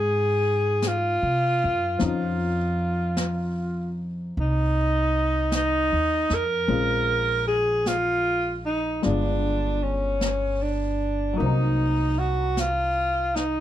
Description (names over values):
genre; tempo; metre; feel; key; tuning
jazz ballad; 51 BPM; 4/4; swing 68% on 8ths; unclear; A4 = 439 Hz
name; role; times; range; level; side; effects
breathy alto saxophone; melody; 0.0-13.6 s; Db4 to Bb4; -24 LUFS; equal; slapback echo
warm baby grand piano; accompaniment; 0.0-13.6 s; C3 to F4; -30 LUFS; left 6 dB; none
upright bass; bass; 0.0-13.6 s; G1 to C3; -26 LUFS; equal; none
jazz brush drum kit; drums; 0.8-13.6 s; brushed snare drum, hi-hat, snare drum; -34 LUFS; left 1 dB; none
room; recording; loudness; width
light reverb; none; -22 LUFS; side -12 dB against mid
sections
0.0-13.6 A section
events
none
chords
0.0 Fm7; 2.0 F5; 6.7 Bbm9; 9.0 G7b9; 11.4 Cm7b5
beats
0.82 | 2.00 3.17 4.34 5.52 | 6.69 7.86 9.04 10.21 | 11.38 12.56